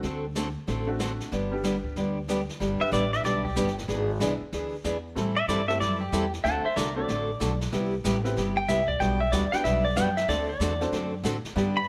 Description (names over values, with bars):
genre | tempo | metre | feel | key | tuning
country, western swing | 187 BPM | 4/4 | swing 63% on 8ths | G major | A4 = 440 Hz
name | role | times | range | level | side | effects
clear upright piano | accompaniment | 0.0-11.9 s | G3 to D5 | -36 LUFS | equal | none
picked steel-string acoustic guitar | accompaniment | 0.0-11.8 s | B2 to A4 | -32 LUFS | equal | none
upright bass | bass | 0.0-11.9 s | G1 to A2 | -34 LUFS | equal | none
jazz brush drum kit | drums | 0.0-11.9 s | brushed snare drum, hi-hat, kick drum, snare drum | -40 LUFS | equal | none
pedal steel guitar | second line | 2.8-11.9 s | G4 to B5 | -30 LUFS | equal | none
room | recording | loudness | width
moderate echo chamber reverb, RT60 1.6 s | none | -27 LUFS | mono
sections
0.0-2.6 A section; 2.6-11.9 B section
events
pedal steel guitar solo 2.6-11.9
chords
0.0 D7; 1.3 G; 3.9 E7; 5.2 Am7; 6.4 D7; 7.7 Cmaj7; 9.0 Gmaj7/B; 10.3 D7